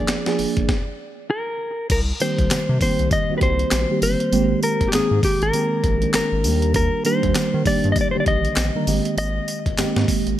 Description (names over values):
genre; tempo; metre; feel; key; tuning
R&B, new jack swing; 99 BPM; 4/4; swing 60% on 16ths; C minor; A4 = 437 Hz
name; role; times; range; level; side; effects
mellow electric guitar; melody; 0.0-10.4 s; G4 to Eb5; -23 LUFS; left 1 dB; none
mellow FM electric piano; accompaniment; 0.0-10.4 s; D3 to Bb4; -22 LUFS; right 2 dB; chorus, phaser
round analog bass; bass; 0.0-10.4 s; G1 to Eb3; -23 LUFS; equal; none
breakbeat sampler-style drum kit; drums; 0.1-10.4 s; crash cymbal, handclaps, hi-hat, kick drum, snare drum, tambourine; -23 LUFS; equal; none
group handclap; percussion; 0.1-9.9 s; none; -36 LUFS; left 4 dB; none
room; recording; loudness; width
light reverb, digital ambience; none; -18 LUFS; side -12 dB against mid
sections
0.0-1.9 A section; 1.9-10.4 B section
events
stop 0.7-1.9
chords
0.0 Bb7; 1.9 Cm7; 4.3 Abmaj9; 6.4 Ebmaj7; 8.9 Abmaj9